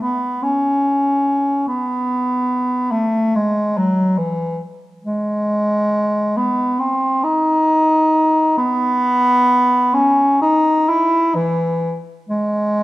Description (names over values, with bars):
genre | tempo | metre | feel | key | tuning
classical, free, expressive piece for unaccompanied bass clarinet | 63-75 BPM | 4/4 | rubato | unclear | A4 = 443 Hz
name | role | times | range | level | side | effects
clear bass clarinet | solo | 0.0-12.8 s | E3 to E4 | -15 LUFS | equal | none
room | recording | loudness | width
wet recital hall reverb, RT60 1.4 s | none | -15 LUFS | side -17 dB against mid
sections
0.0-12.8 A section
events
none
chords
none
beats
0.02 0.83 | 1.65 2.46 3.35 4.19 | 5.06 5.93 6.81 7.69 | 8.58 9.49 10.43 11.35 | 12.28